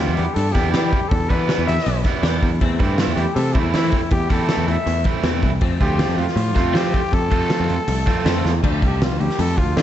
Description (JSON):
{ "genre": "indie rock", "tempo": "160 BPM", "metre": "4/4", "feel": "straight", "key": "D dorian", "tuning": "A4 = 440 Hz", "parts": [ { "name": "growling trumpet", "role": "melody", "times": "0.0-9.8 s", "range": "E4 to E5", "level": "-25 LUFS", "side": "left 2 dB", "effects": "analog delay" }, { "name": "biting overdriven guitar", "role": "riff", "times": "0.0-8.5 s", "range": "E3 to F4", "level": "-26 LUFS", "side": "right 6 dB", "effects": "wide subtle chorus, analog delay" }, { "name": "twelve-string electric guitar", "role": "riff", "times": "0.0-9.8 s", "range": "E3 to G4", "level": "-28 LUFS", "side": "left 7 dB", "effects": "ensemble chorus" }, { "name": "modern bright picked electric bass", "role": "bass", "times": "0.0-9.8 s", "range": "B1 to F3", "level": "-21 LUFS", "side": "equal", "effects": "none" }, { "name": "loose indie drum kit", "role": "drums", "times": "0.2-9.8 s", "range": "crash cymbal, hi-hat, kick drum, snare drum", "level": "-21 LUFS", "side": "equal", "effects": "none" } ], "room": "moderate plate reverb, RT60 1.9 s, small room ambience", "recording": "dreamy mix soaked in reverb, nothing above 8.0 kHz", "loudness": "-16 LUFS", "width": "side -11 dB against mid", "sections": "0.0-8.6 A section; 8.6-9.8 A section", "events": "drum fill 8.4", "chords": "0.0 Em7; 2.6 Am/E; 5.6 F; 8.6 Dm" }